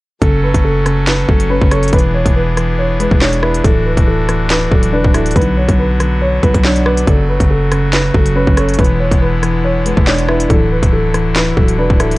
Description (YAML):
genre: hip hop, drill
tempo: 140 BPM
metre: 4/4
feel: half-time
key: F# minor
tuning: A4 = 440 Hz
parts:
  - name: dark concert grand piano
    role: melody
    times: 0.2-12.2 s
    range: A4 to C#5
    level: -18 LUFS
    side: equal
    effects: none
  - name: soft electric-piano-like synth keys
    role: accompaniment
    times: 0.2-12.2 s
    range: C#3 to D5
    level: -18 LUFS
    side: left 1 dB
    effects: chorus
  - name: pipe organ, trumpet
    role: sustained chords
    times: 0.2-12.2 s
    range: C#3 to A4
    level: -23 LUFS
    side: left 1 dB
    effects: none
  - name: growling 808-style bass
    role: bass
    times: 0.2-12.2 s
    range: D1 to B1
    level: -15 LUFS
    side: equal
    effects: none
  - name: drill drum kit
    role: drums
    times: 0.2-12.2 s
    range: handclaps, hi-hat, kick drum, rim click, snare drum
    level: -14 LUFS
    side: equal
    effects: vintage 12-bit sampler grit
room: little or no reverb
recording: dry, gritty hardware recording, cassette tape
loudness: -10 LUFS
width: side -20 dB against mid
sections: 0.2-12.2 A section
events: none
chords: 0.2 F#m; 1.9 E7; 3.6 Dadd9; 5.4 Bm; 7.1 F#m; 8.8 E7; 10.5 Dadd9